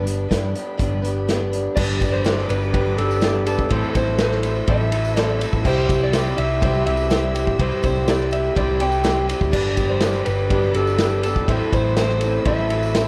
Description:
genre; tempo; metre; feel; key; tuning
folk rock and heartland rock; 124 BPM; 4/4; straight; C major; A4 = 437 Hz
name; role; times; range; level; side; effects
picked steel-string acoustic guitar; accompaniment; 0.0-13.1 s; G2 to B4; -31 LUFS; equal; none
rich studio string section; sustained chords; 0.0-13.1 s; D4 to E6; -38 LUFS; equal; none
electric guitar through a small old amp; riff; 0.0-13.1 s; G2 to A4; -27 LUFS; equal; none
hollow-body short-scale picked electric bass; bass; 0.0-13.1 s; E1 to G2; -26 LUFS; equal; none
vintage drum kit; drums; 0.1-13.1 s; crash cymbal, hi-hat, kick drum, ride cymbal, snare drum; -25 LUFS; equal; none
electric slide guitar; melody; 1.8-13.1 s; A4 to G5; -27 LUFS; equal; none
bright concert grand piano; accompaniment; 1.8-13.1 s; D4 to D5; -36 LUFS; equal; none
tambourine; percussion; 1.9-13.1 s; none; -47 LUFS; equal; none
room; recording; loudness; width
light reverb, small room reverb; none; -20 LUFS; mono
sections
0.0-1.8 A section; 1.8-13.1 B section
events
none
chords
0.0 G; 3.7 Am; 5.6 C; 9.5 G; 11.5 Am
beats
0.31 0.80 1.28 | 1.77 2.25 2.74 3.23 | 3.71 4.19 4.68 5.16 | 5.65 6.13 6.62 7.10 | 7.59 8.07 8.56 9.04 | 9.53 10.02 10.50 10.99 | 11.47 11.96 12.45 12.94

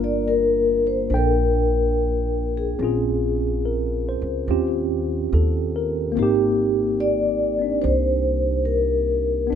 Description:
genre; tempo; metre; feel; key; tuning
jazz ballad; 71 BPM; 4/4; swing 69% on 8ths; unclear; A4 = 440 Hz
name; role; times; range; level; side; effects
vibraphone with soft mallets; melody; 0.0-9.6 s; G4 to D5; -22 LUFS; left 4 dB; none
tine electric piano; accompaniment; 0.0-9.6 s; Bb3 to G5; -23 LUFS; right 1 dB; medium stereo tremolo
upright bass; bass; 0.0-9.6 s; G1 to Eb2; -25 LUFS; right 1 dB; none
room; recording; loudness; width
little or no reverb; minimal, uncompressed stereo recording; -19 LUFS; side -8 dB against mid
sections
0.0-9.6 A section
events
none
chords
0.0 Gm7; 2.8 Bbm7; 4.5 Eb13; 6.2 Abmaj9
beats
0.27 1.11 1.95 | 2.80 3.64 4.48 5.32 | 6.16 7.00 7.84 8.68 | 9.53

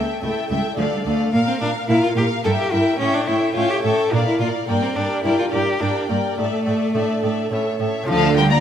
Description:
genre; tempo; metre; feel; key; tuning
classical, baroque-style concerto movement with solo episodes; 107 BPM; 3/4; straight; unclear; A4 = 441 Hz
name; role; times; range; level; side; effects
warm chamber violin section; melody; 0.0-8.6 s; E5 to Bb5; -28 LUFS; left 4 dB; none
rich chamber violin section; second line; 0.0-8.6 s; A4 to F5; -26 LUFS; left 4 dB; none
warm chamber viola section; accompaniment; 0.0-8.6 s; F4 to C#5; -28 LUFS; right 3 dB; none
warm symphonic cello section; bass; 0.0-8.6 s; C#2 to D3; -24 LUFS; right 4 dB; none
rich cello; melody; 0.2-8.6 s; F3 to A4; -21 LUFS; left 1 dB; none
lute; accompaniment; 0.2-8.6 s; D2 to F4; -28 LUFS; right 1 dB; none
warm studio double bass section; bass; 8.1-8.6 s; D2; -24 LUFS; right 4 dB; none
room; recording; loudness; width
moderate scoring stage reverb, RT60 1.8 s; none; -17 LUFS; side -9 dB against mid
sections
0.0-8.1 A section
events
none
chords
0.0 A7/C#; 0.8 Dm; 1.3 Bb5; 2.5 Edim/G; 3.0 A7; 4.1 Bb; 4.7 Gm; 6.4 Asus4; 7.5 A; 8.1 Dm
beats
0.23 0.78 | 1.34 1.89 2.45 | 3.01 3.56 4.12 | 4.69 5.25 5.81 | 6.38 6.95 7.52 | 8.09

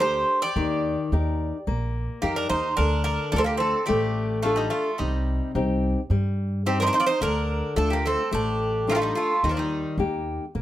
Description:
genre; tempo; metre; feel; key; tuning
greek folk, Greek bouzouki band; 108 BPM; 4/4; straight; D phrygian; A4 = 440 Hz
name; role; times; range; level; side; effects
Greek bouzouki; melody; 0.0-10.0 s; D4 to D5; -26 LUFS; right 2 dB; none
Greek bouzouki; second line; 0.0-10.0 s; F3 to G4; -30 LUFS; right 1 dB; none
nylon-string guitar; accompaniment; 0.0-10.6 s; C3 to Bb4; -27 LUFS; left 3 dB; none
upright bass; bass; 0.0-10.6 s; A1 to G2; -26 LUFS; equal; none
room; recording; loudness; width
light reverb; none; -22 LUFS; side -13 dB against mid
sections
0.0-2.8 A section; 2.8-10.6 A section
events
none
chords
0.0 Gm; 0.6 Eb; 2.8 Dm; 5.0 Cm; 7.2 Dm; 9.4 Eb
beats
0.00 | 0.55 1.11 1.66 2.22 | 2.77 3.33 3.88 4.44 | 4.99 5.55 6.11 6.66 | 7.22 7.77 8.33 8.88 | 9.44 9.99 10.55

